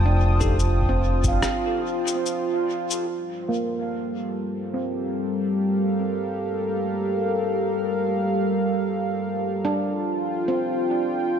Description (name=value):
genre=ambient dub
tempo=72 BPM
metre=4/4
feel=swing 55% on 16ths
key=G minor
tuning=A4 = 440 Hz
part: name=warm analog pad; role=sustained chords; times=0.0-11.4 s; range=G3 to Eb6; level=-24 LUFS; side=equal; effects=chorus
part: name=upright bass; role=bass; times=0.0-1.4 s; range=F1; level=-20 LUFS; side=equal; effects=tube saturation
part: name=handpan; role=arpeggios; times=0.1-11.4 s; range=Bb3 to F5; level=-29 LUFS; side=right 2 dB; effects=low-pass filter, dub echo
part: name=bell-like tine electric piano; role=stabs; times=0.4-0.6 s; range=Eb4 to A4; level=-37 LUFS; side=moving between left 7 dB and right 4 dB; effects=none
part: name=electronic cabasa and rim click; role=drums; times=0.4-3.1 s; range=none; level=-31 LUFS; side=left 3 dB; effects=small room ambience, dub echo
part: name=electronic kick drum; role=drums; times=0.4-1.4 s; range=none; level=-27 LUFS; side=equal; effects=small room ambience
room=moderate echo chamber reverb, RT60 2.5 s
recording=none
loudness=-22 LUFS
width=side -8 dB against mid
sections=0.0-3.1 A section; 3.1-11.4 B section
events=break 1.4-3.1; filter sweep on handpan 3.1-11.4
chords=0.0 F9; 3.1 Gm11; 9.8 Fadd9